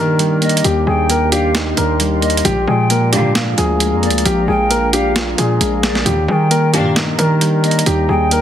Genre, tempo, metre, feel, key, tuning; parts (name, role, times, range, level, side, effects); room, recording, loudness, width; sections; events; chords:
hip hop, trap; 133 BPM; 4/4; half-time; Eb major; A4 = 440 Hz
warm concert grand piano; melody; 0.0-8.4 s; G4 to Bb4; -19 LUFS; left 1 dB; low-pass filter
soft electric-piano-like synth keys; accompaniment; 0.0-8.4 s; Eb3 to F4; -19 LUFS; left 2 dB; chorus, low-pass filter
deep dark ambient pad; sustained chords; 0.0-8.4 s; G4 to C6; -25 LUFS; left 1 dB; chorus, built-in reverb, tremolo
distorted 808-style bass; bass; 0.0-8.4 s; Bb1 to Eb3; -18 LUFS; right 1 dB; distortion
boom bap sampler-style drum kit; drums; 0.2-8.4 s; hi-hat, snare drum; -19 LUFS; right 2 dB
large pan pipes; second line; 0.4-8.4 s; D5 to G5; -22 LUFS; equal; ping-pong delay
warm chamber string section; stabs; 2.5-7.1 s; G2 to D4; -24 LUFS; right 3 dB
little or no reverb; heavily compressed radio sound; -12 LUFS; side -10 dB against mid
0.0-8.4 A section
0.0 Ebmaj7; 2.5 Bb7; 6.1 Ebmaj7